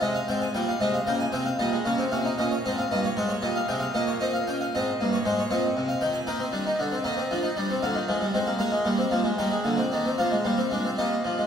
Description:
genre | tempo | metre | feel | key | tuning
classical, baroque-style 3-part fugue for harpsichord | 77 BPM (dotted quarters) | 12/8 | straight | Ab major | A4 = 440 Hz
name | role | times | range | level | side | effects
harpsichord | solo | 0.0-11.5 s | G2 to Ab5 | -23 LUFS | equal | none
room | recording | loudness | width
wet church reverb, RT60 3.2 s | recorded in a church or concert hall | -23 LUFS | side -8 dB against mid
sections
0.0-11.5 A section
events
none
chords
0.0 Ab; 1.6 Eb7/Bb; 6.3 Eb; 7.8 Bb7/D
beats
| 0.03 0.82 1.60 2.39 | 3.18 3.96 4.73 5.50 | 6.27 7.05 7.83 8.62 | 9.40 10.19 10.97

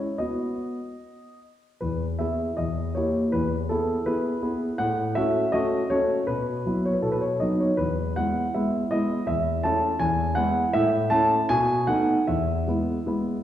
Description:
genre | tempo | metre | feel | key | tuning
classical-period piano sonatina | 73-83 BPM | 2/4 | rubato | E major | A4 = 438 Hz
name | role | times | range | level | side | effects
warm grand piano | solo | 0.0-13.4 s | E2 to A5 | -22 LUFS | equal | none
room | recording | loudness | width
wet recital hall reverb, RT60 1.5 s | heard from further back in the room | -22 LUFS | side -11 dB against mid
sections
0.0-1.8 A section; 1.8-13.4 B section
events
none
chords
0.2 B; 1.8 E; 2.6 Edim7; 3.3 E; 4.8 F#m/A; 6.3 Bsus4; 7.0 B; 7.8 E; 9.3 A/E; 10.0 E; 10.7 A; 11.5 B7; 12.3 E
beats
| 0.20 1.01 | 1.81 2.58 | 3.33 4.05 | 4.78 5.53 | 6.28 7.04 | 7.80 8.55 | 9.28 10.01 | 10.73 11.48 | 12.27 13.07

